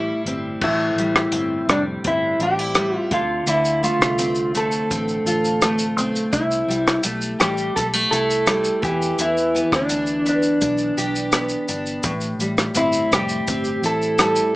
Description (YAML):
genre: indie pop, bedroom pop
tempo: 84 BPM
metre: 4/4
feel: straight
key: A minor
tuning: A4 = 440 Hz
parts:
  - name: electric guitar through a small old amp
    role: melody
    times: 0.0-14.6 s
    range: D4 to A4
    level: -21 LUFS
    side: equal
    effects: wide subtle chorus, plate reverb, digital delay
  - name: fingerpicked steel-string acoustic guitar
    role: accompaniment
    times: 0.0-14.6 s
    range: A2 to G4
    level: -24 LUFS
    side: equal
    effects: lush chorus, warbly pitch drift, plate reverb
  - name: vintage muted fingered electric bass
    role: bass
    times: 0.0-14.4 s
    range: F1 to E2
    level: -30 LUFS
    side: equal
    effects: none
  - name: compact cocktail drum kit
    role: drums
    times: 0.3-14.5 s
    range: crash cymbal, hi-hat, kick drum, rim click, shaker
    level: -22 LUFS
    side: equal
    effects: none
room: moderate studio reverb, RT60 0.5 s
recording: small speaker sound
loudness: -18 LUFS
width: side -19 dB against mid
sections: 0.6-14.6 A section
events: none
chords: 0.0 Am7; 3.1 Dm7; 6.3 C6; 8.8 Em7; 12.0 Am7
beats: | 0.62 1.33 2.05 2.76 | 3.48 4.19 4.90 5.62 | 6.33 7.05 7.76 8.48 | 9.19 9.90 10.62 11.33 | 12.05 12.76 13.48 14.19